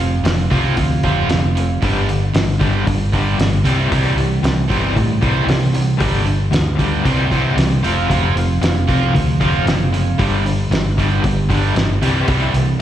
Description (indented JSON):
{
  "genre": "classic rock",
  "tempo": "115 BPM",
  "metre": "4/4",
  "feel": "straight",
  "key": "unclear",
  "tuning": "A4 = 440 Hz",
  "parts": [
    { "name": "distorted electric guitar", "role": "riff", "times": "0.0-12.8 s", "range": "G2 to F4", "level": "-21 LUFS", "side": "right 10 dB", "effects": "distortion, slapback echo" },
    { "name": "overdriven semi-hollow guitar", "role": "riff", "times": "0.0-12.8 s", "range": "F2 to G3", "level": "-21 LUFS", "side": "left 7 dB", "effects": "tremolo, slapback echo" },
    { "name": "hollow-body short-scale fingered electric bass", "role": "bass", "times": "0.0-12.8 s", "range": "F1 to A2", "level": "-18 LUFS", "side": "equal", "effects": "none" },
    { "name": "cloth-damped thuddy drum kit", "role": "drums", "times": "0.3-12.7 s", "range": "hi-hat, kick drum, snare drum", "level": "-21 LUFS", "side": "equal", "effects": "none" }
  ],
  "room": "light reverb",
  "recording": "live gig heard through the venue's PA, recital hall reverb",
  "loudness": "-14 LUFS",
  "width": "side -11 dB against mid",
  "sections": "0.0-12.8 A section",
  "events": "none",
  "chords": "0.0 F5; 1.8 G5; 3.6 C; 6.0 G5; 7.0 C; 7.8 F5; 10.2 G5; 12.0 C",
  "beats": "0.25 0.77 1.29 | 1.82 2.34 2.86 3.38 | 3.91 4.43 4.96 5.48 | 6.00 6.52 7.05 7.57 | 8.09 8.62 9.14 9.66 | 10.19 10.71 11.23 11.76 | 12.28 12.80"
}